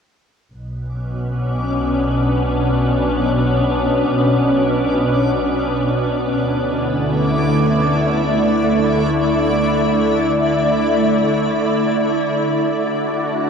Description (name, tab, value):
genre	ambient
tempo	free time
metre	none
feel	none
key	B minor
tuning	A4 = 438 Hz
part	soft additive organ-like pad	sustained chords	0.9-13.5 s	B2 to D5	-16 LUFS	equal	ensemble chorus, built-in reverb
part	dark chamber double bass section	bass	0.5-12.2 s	B1 to D2	-25 LUFS	equal	none
part	backwards swelling texture	texture	1.0-13.5 s	C#6 to D6	-30 LUFS	right 1 dB	built-in reverb
room	wet huge ambient reverb, RT60 8.1 s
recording	worn, warbling old tape, cassette tape, warbly pitch drift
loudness	-15 LUFS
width	side -6 dB against mid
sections	0.5-12.2 A section; 12.2-13.5 B section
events	fade-out on double bass section 0.5-12.2; fade-out on synth texture 0.5-12.2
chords	0.5 Bmadd9; 6.4 Dsus2; 12.2 Dmaj9